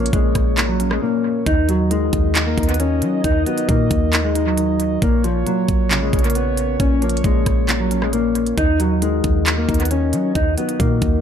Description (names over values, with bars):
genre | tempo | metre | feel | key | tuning
hip hop, trap | 135 BPM | 4/4 | half-time | Eb minor | A4 = 440 Hz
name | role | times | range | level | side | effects
mellow electric guitar | melody | 0.0-11.2 s | F3 to Eb4 | -20 LUFS | left 1 dB | analog delay
felt-muted upright piano | accompaniment | 0.0-11.2 s | Bb2 to F4 | -24 LUFS | left 6 dB | analog delay
mellow French horn section | sustained chords | 0.0-11.2 s | F4 to Eb5 | -28 LUFS | right 5 dB | none
clean 808-style bass | bass | 0.0-11.2 s | Bb1 to Gb3 | -21 LUFS | right 1 dB | none
trap drum kit | drums | 0.1-11.1 s | handclaps, hi-hat, kick drum, rim click | -20 LUFS | right 1 dB | analog delay
room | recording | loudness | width
light reverb | echo-heavy mix | -16 LUFS | side -8 dB against mid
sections
0.0-1.5 A section; 1.5-11.2 A section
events
drums muted 1.0-1.5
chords
0.0 Bbm; 1.5 Ebmadd9; 5.0 Bbm; 8.6 Ebmadd9